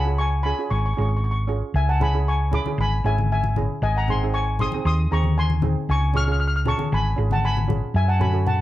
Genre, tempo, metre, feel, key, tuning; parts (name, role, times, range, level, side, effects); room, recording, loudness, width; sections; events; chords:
calypso; 116 BPM; 4/4; straight; A4 = 444 Hz
steel pan; melody; 0.0-8.6 s; D#5 to E#6; -26 LUFS; left 2 dB; cassette tape
steel pan; accompaniment; 0.0-8.6 s; B#3 to A4; -30 LUFS; right 8 dB
hollow-body short-scale fingered electric bass; bass; 0.0-8.6 s; G#1 to F#2; -21 LUFS; equal
congas; percussion; 2.0-8.6 s; -28 LUFS; left 5 dB
light reverb; home recording on cassette; -19 LUFS; side -14 dB against mid
0.0-8.6 A section
0.0 C#; 1.7 C#m; 3.8 G#; 5.9 C#; 7.9 F#m